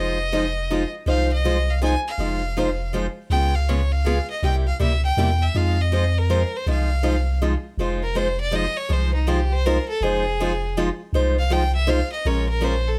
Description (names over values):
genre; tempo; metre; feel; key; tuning
acoustic string swing (jazz manouche); 161 BPM; 3/4; swing 63% on 8ths; F minor; A4 = 440 Hz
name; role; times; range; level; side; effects
bright violin; melody; 0.0-13.0 s; Eb4 to Ab5; -29 LUFS; equal; none
picked steel-string acoustic guitar; accompaniment; 0.0-12.7 s; C3 to C5; -27 LUFS; equal; none
punchy sub bass; bass; 0.0-13.0 s; F1 to F2; -24 LUFS; equal; none
room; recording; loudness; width
light reverb; none; -22 LUFS; mono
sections
0.0-7.8 A section; 7.8-13.0 B section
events
violin solo 7.8-13.0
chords
0.0 Fm7; 3.3 Db7; 4.4 C7; 5.5 Fm7; 12.3 Bbm7